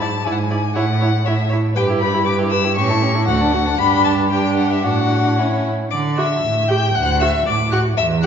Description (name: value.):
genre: quick classical-period movement for string quartet.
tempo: 117 BPM.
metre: 2/4.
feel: rubato.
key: D major.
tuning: A4 = 440 Hz.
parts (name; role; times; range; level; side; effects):
rich violin; melody; 0.0-8.3 s; E5 to G6; -21 LUFS; left 6 dB; none.
clear violin; second line; 0.0-8.3 s; E4 to G5; -22 LUFS; left 2 dB; none.
clear viola; accompaniment; 0.0-8.3 s; A3 to G4; -22 LUFS; right 2 dB; none.
rich cello; bass; 0.0-8.3 s; D2 to D3; -19 LUFS; right 2 dB; none.
room: wet recital hall reverb, RT60 1.7 s.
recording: heard from further back in the room, nothing above 7.6 kHz.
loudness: -15 LUFS.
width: side -7 dB against mid.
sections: 0.0-5.9 A section; 5.9-8.3 B section.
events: none.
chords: 0.0 E7/G#; 0.8 A; 1.8 Em/G; 2.8 A7; 3.3 D; 3.8 G5; 4.9 D/A; 5.4 A; 5.9 D; 6.4 A5; 7.0 D.